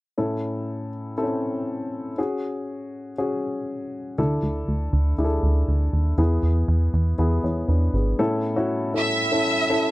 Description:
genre	pop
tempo	120 BPM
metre	4/4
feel	straight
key	unclear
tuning	A4 = 440 Hz
part	dark upright piano	accompaniment	0.2-9.9 s	A2 to C#5	-25 LUFS	left 1 dB	none
part	plucky analog bass	bass	4.2-8.1 s	G#1 to E2	-20 LUFS	equal	none
part	rich studio violin section	melody	9.0-9.9 s	E5	-21 LUFS	right 2 dB	none
room	little or no reverb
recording	dry, close 1970s-style studio recording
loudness	-21 LUFS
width	side -17 dB against mid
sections	0.2-8.2 A section; 8.2-9.9 B section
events	none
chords	0.2 A; 2.2 F#sus2; 4.2 Dsus2; 6.2 E; 8.2 A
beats	| 0.17 0.68 1.18 1.68 | 2.18 2.68 3.18 3.68 | 4.18 4.68 5.18 5.69 | 6.19 6.69 7.19 7.69 | 8.19 8.69 9.19 9.70

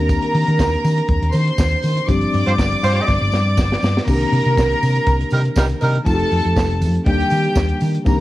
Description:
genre	disco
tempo	120 BPM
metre	4/4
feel	straight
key	C dorian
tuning	A4 = 440 Hz
part	clear studio string section	second line	0.0-8.2 s	G4 to D6	-21 LUFS	equal	cassette tape
part	mellow tine electric piano	accompaniment	0.0-8.2 s	Eb3 to G4	-24 LUFS	left 3 dB	medium stereo tremolo, cassette tape
part	hollow-body short-scale fingered electric bass	bass	0.0-8.2 s	F1 to Eb3	-18 LUFS	equal	none
part	tight funk drum kit	drums	0.1-8.2 s	crash cymbal, handclaps, hi-hat, kick drum, snare drum	-21 LUFS	equal	cassette tape
part	tambourine	percussion	0.1-8.2 s	none	-40 LUFS	right 5 dB	none
part	warm horn section	stabs	2.5-6.0 s	G3 to C5	-22 LUFS	right 2 dB	cassette tape
room	small room ambience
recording	home recording on cassette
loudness	-15 LUFS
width	side -16 dB against mid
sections	0.0-4.1 A section; 4.1-8.2 B section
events	band accent 2.1-4.1; drum fill 3.1-4.1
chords	0.0 Cm9/Eb; 2.1 G7sus4; 4.1 Cm9; 6.1 F9; 7.1 Ebmaj7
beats	| 0.10 0.59 1.09 1.59 | 2.09 2.58 3.08 3.58 | 4.08 4.57 5.07 5.57 | 6.07 6.57 7.07 7.57 | 8.07

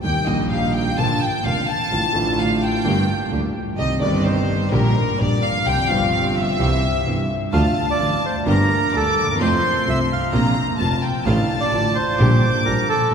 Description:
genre	tango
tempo	128 BPM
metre	4/4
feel	rubato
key	D minor from 7.5 s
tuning	A4 = 439 Hz
part	warm studio violin section	second line	0.0-13.1 s	Bb4 to D6	-23 LUFS	left 2 dB	none
part	warm concert grand piano	accompaniment	0.0-12.9 s	F1 to G4	-21 LUFS	equal	none
part	rich chamber string section	stabs	0.0-13.1 s	A3 to G4	-30 LUFS	right 2 dB	none
part	rich double bass	bass	0.0-13.1 s	F1 to F2	-23 LUFS	right 1 dB	none
part	bandoneon	melody	7.5-13.1 s	A4 to F5	-21 LUFS	right 3 dB	none
room	wet cathedral reverb, RT60 4.5 s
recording	recorded in a church or concert hall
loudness	-17 LUFS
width	side -7 dB against mid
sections	0.0-7.5 A section; 7.5-13.1 B section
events	violin section solo 0.0-7.5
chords	0.0 Eb; 1.0 Bb; 1.9 Dm/A; 2.8 Gm; 3.8 Cm; 4.7 Gm/Bb; 5.7 Csus4; 6.6 C; 7.5 Dm; 8.5 Gm; 9.4 F; 10.3 Bbsus2; 11.3 Dm/A; 12.2 Gm/Bb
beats	| 0.04 0.51 0.97 1.44 | 1.91 2.38 2.85 3.31 | 3.78 4.25 4.72 5.18 | 5.65 6.12 6.59 7.06 | 7.53 8.00 8.46 8.93 | 9.40 9.87 10.33 10.80 | 11.26 11.73 12.19 12.66 | 13.12

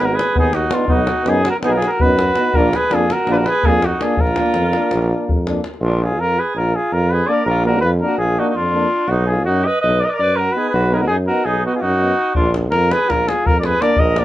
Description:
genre	balkan folk, Balkan brass band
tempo	330 BPM (eighths)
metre	9/8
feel	straight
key	Bb phrygian dominant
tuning	A4 = 441 Hz
part	clear flugelhorn	melody	0.0-14.2 s	F4 to Eb5	-18 LUFS	equal	none
part	warm alto saxophone	second line	0.0-14.2 s	D4 to B4	-23 LUFS	right 2 dB	none
part	clear euphonium	accompaniment	0.0-14.2 s	D4 to D#4	-25 LUFS	left 5 dB	none
part	clear euphonium	accompaniment	0.0-14.2 s	Bb3 to Cb4	-23 LUFS	right 3 dB	none
part	clear tuba	bass	0.0-14.2 s	Ab1 to F#2	-20 LUFS	equal	none
part	davul	percussion	0.2-5.8, 12.3-14.2 s	none	-21 LUFS	left 1 dB	none
room	light reverb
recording	none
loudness	-14 LUFS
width	side -14 dB against mid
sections	0.0-5.8 A section; 5.8-14.2 B section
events	none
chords	0.0 Abm; 0.9 B; 2.5 Bb; 9.1 B; 12.3 Bb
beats	0.16 0.35 0.53 0.71 | 0.90 1.08 1.26 1.44 1.63 1.81 1.99 2.17 2.36 | 2.54 2.72 2.90 3.09 3.27 3.45 3.63 3.82 4.00 | 4.18 4.36 4.54 4.73 4.91 5.09 5.27 5.46 5.64 | 5.82 6.00 6.18 6.37 6.55 6.73 6.91 7.09 7.27 | 7.45 7.64 7.82 8.00 8.18 8.36 8.54 8.72 8.91 | 9.09 9.27 9.45 9.63 9.81 9.99 10.17 10.36 10.54 | 10.72 10.90 11.08 11.26 11.44 11.62 11.80 11.98 12.17 | 12.35 12.53 12.71 12.89 13.07 13.25 13.43 13.61 13.79 | 13.97 14.15

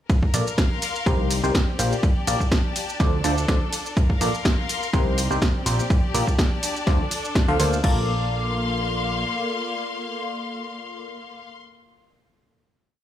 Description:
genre	piano house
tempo	124 BPM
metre	4/4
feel	swing 54% on 16ths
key	Bb major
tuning	A4 = 440 Hz
part	electronic kick drum	drums	0.1-7.9 s	none	-21 LUFS	equal	overdrive
part	punchy analog drum machine	drums	0.1-7.9 s	crash cymbal, hi-hat, ride cymbal, shaker, snare drum	-28 LUFS	right 1 dB	overdrive
part	warm studio string section	texture	0.1-11.6 s	Bb3 to C6	-29 LUFS	left 3 dB	sidechain pumping
part	barking FM electric piano	riff	0.3-11.4 s	C3 to F5	-28 LUFS	left 1 dB	phaser, sidechain pumping, tape echo
part	plucky analog bass	bass	0.3-9.2 s	Bb1 to D2	-24 LUFS	equal	sidechain pumping
room	light reverb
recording	studio reverb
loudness	-20 LUFS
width	side -11 dB against mid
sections	0.1-7.8 drop; 7.8-11.7 final chord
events	drop 0.1-7.8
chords	0.1 Bb5; 1.1 Cm7; 1.8 Gm7/Bb; 2.8 Dm7; 4.0 Bb; 4.9 Cm7; 5.7 Gm7/Bb; 6.6 Dm7; 7.8 Bbmaj7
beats	| 0.10 0.58 1.06 1.55 | 2.03 2.52 3.00 3.48 | 3.97 4.45 4.93 5.42 | 5.90 6.39 6.87 7.36 | 7.84 8.32 8.81 9.29 | 9.77 10.26 10.74 11.23

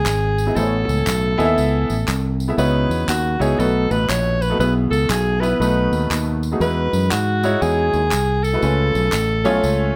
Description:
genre	uptempo gospel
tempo	119 BPM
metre	4/4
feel	swing 63% on 8ths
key	E major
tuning	A4 = 440 Hz
part	bright alto saxophone	melody	0.0-10.0 s	F#4 to C#5	-24 LUFS	equal	none
part	fingered electric bass	bass	0.0-9.9 s	G#1 to G#2	-22 LUFS	equal	none
part	handclaps and tambourine	percussion	0.1-9.8 s	none	-31 LUFS	equal	none
part	warm concert grand piano	accompaniment	0.5-10.0 s	A2 to G#5	-24 LUFS	equal	none
room	light reverb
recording	none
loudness	-19 LUFS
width	mono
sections	0.0-10.0 A section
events	none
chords	0.0 Emaj7 (rootless); 0.6 Amaj9; 2.6 C#m11; 3.6 B7; 4.6 E/B; 5.6 B7; 6.6 Emaj9; 8.6 C#7b13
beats	0.05 | 0.56 1.06 1.57 2.08 | 2.58 3.08 3.59 4.09 | 4.60 5.10 5.61 6.11 | 6.61 7.12 7.62 8.12 | 8.63 9.13 9.64

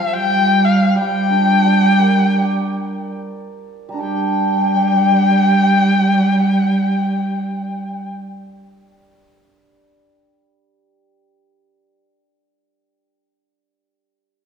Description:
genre	chinese traditional, Chinese chamber ensemble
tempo	71-99 BPM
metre	4/4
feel	rubato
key	G yu mode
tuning	A4 = 440 Hz
part	rich erhu	melody	0.0-8.1 s	F5 to G5	-21 LUFS	left 4 dB	none
part	dark cello	second line	0.0-8.1 s	F3 to G3	-16 LUFS	right 2 dB	none
part	mellow large dizi	second line	0.0-8.1 s	F5 to Bb5	-20 LUFS	left 4 dB	none
part	hammered dulcimer	accompaniment	0.0-12.0 s	F3 to D5	-27 LUFS	right 4 dB	none
room	wet recital hall reverb, RT60 1.6 s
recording	recorded in a church or concert hall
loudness	-13 LUFS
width	side -7 dB against mid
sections	0.0-4.0 A section; 4.0-7.3 B section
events	slowing down 0.0-4.0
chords	none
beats	0.35 | 0.98 1.65 2.37 3.17 | 4.01 4.85 5.68 6.50

